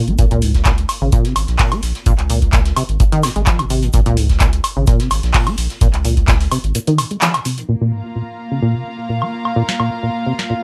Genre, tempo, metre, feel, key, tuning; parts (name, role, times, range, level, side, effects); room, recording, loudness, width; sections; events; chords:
acid house; 128 BPM; 4/4; swing 53% on 16ths; Bb minor; A4 = 440 Hz
acid bass, saw; riff; 0.0-10.5 s; Ab2 to Bb3; -22 LUFS; equal; tube saturation, subtle chorus, vintage 12-bit sampler grit, sidechain pumping, tape echo
saturated sub bass; bass; 0.0-6.7 s; Ab1 to Db2; -21 LUFS; equal; sidechain pumping
booming analog drum machine; drums; 0.1-10.5 s; handclaps, hi-hat, snare drum, woodblock; -22 LUFS; equal
electronic kick drum; drums; 0.2-6.4 s; -17 LUFS; equal
soft brush drum kit; drums; 0.2-7.7 s; hi-hat, shaker, snare drum; -34 LUFS; equal; sidechain pumping on hats, high-pass filter on hats, high-pass filter on snare, sidechain pumping on perc, high-pass filter on perc, high-pass filter on room
warm studio string section; texture; 7.7-10.6 s; Bb3 to Bb5; -25 LUFS; equal; sidechain pumping
light reverb; -16 LUFS; mono
0.0-7.7 A section; 7.7-10.6 B section
break 6.7-7.7; band accent 7.2; filter sweep on acid bass 7.7-10.6
0.0 Bb5